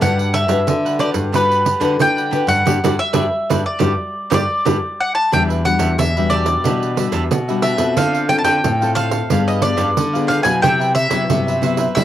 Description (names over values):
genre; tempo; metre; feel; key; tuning
samba and choro; 90 BPM; 4/4; straight; G major; A4 = 441 Hz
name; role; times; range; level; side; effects
bowl-back mandolin; melody; 0.0-12.0 s; B4 to A5; -18 LUFS; equal; cassette tape
cavaquinho; accompaniment; 0.0-12.0 s; D4 to F#5; -26 LUFS; right 6 dB; none
nylon-string guitar; accompaniment; 0.0-12.0 s; G2 to B4; -22 LUFS; left 7 dB; none
nylon-string guitar; bass; 0.0-12.0 s; E2 to G3; -21 LUFS; left 1 dB; none
pandeiro; percussion; 0.0-12.0 s; none; -21 LUFS; right 6 dB; none
room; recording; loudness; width
light reverb, studio ambience; home recording on cassette; -14 LUFS; side -12 dB against mid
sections
0.0-5.3 A section; 5.3-12.0 B section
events
band accent 2.7-5.3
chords
0.0 Gmaj7; 5.3 Em9; 8.0 Dm7; 9.3 G7b9; 10.6 Cmaj7#11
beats
| 0.02 0.68 1.35 2.01 | 2.67 3.34 4.00 4.67 | 5.33 5.99 6.66 7.32 | 7.98 8.64 9.31 9.97 | 10.64 11.30 11.97